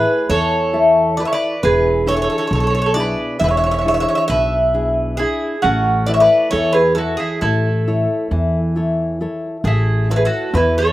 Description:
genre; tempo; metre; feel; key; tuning
greek folk, Greek bouzouki band; 135 BPM (eighths); 9/8; straight; A major; A4 = 440 Hz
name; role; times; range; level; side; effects
Greek bouzouki; melody; 0.0-10.9 s; F#4 to E5; -19 LUFS; right 1 dB; none
mandolin; second line; 0.0-10.9 s; C#4 to C#5; -22 LUFS; right 2 dB; slapback echo
nylon-string guitar; accompaniment; 0.0-10.9 s; B2 to E5; -20 LUFS; left 2 dB; slapback echo
upright bass; bass; 0.0-10.9 s; E1 to E2; -20 LUFS; equal; none
room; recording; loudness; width
little or no reverb; recorded outdoors, with no room sound; -14 LUFS; side -15 dB against mid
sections
0.0-9.6 A section; 9.6-10.9 B section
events
none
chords
0.0 A; 1.6 E7; 5.6 A

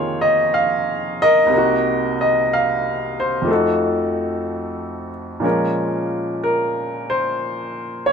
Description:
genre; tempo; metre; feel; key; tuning
jazz ballad; 61 BPM; 4/4; swing 68% on 8ths; Bb minor; A4 = 440 Hz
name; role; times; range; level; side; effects
clear baby grand piano; solo; 0.0-8.1 s; C2 to F5; -17 LUFS; equal; none
room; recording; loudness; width
little or no reverb; close, detailed microphones; -17 LUFS; side -6 dB against mid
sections
0.0-8.1 A section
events
none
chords
0.0 Fm7; 1.5 Cm7b5; 3.5 F7b9; 5.4 Bbm9

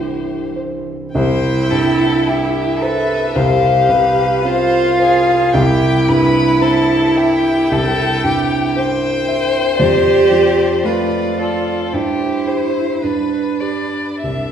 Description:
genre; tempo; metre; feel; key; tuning
classical, slow romantic movement for piano quartet; 55 BPM; 4/4; uneven beats, rubato; C major; A4 = 440 Hz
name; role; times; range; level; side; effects
clear violin; melody; 0.0-14.5 s; G4 to E5; -20 LUFS; left 4 dB; none
rich cello; second line; 0.0-14.5 s; E3 to A4; -17 LUFS; right 2 dB; none
warm violin; second line; 0.0-14.5 s; G4 to B5; -20 LUFS; left 3 dB; none
dark grand piano; accompaniment; 0.0-14.5 s; C2 to E5; -18 LUFS; right 2 dB; none
room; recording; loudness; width
wet recital hall reverb, RT60 1.5 s; heard from further back in the room; -13 LUFS; side -8 dB against mid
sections
0.0-1.1 A section; 1.1-14.5 B section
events
none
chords
0.0 C; 3.3 F5/C; 5.5 C; 9.8 Dm/F; 11.9 C/G; 13.0 G

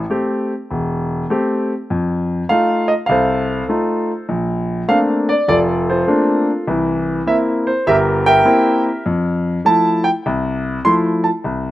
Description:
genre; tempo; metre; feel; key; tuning
solo jazz; 100 BPM; 4/4; swing 66% on 8ths; F major; A4 = 440 Hz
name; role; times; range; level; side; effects
clear concert grand piano; solo; 0.0-11.7 s; E1 to C6; -15 LUFS; equal; slapback echo
room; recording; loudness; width
little or no reverb; recorded outdoors, with no room sound; -15 LUFS; side -14 dB against mid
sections
0.0-11.7 A section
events
none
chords
0.0 Am7; 1.9 F7; 4.3 Bbmaj9; 6.7 C7; 9.1 Fmaj7

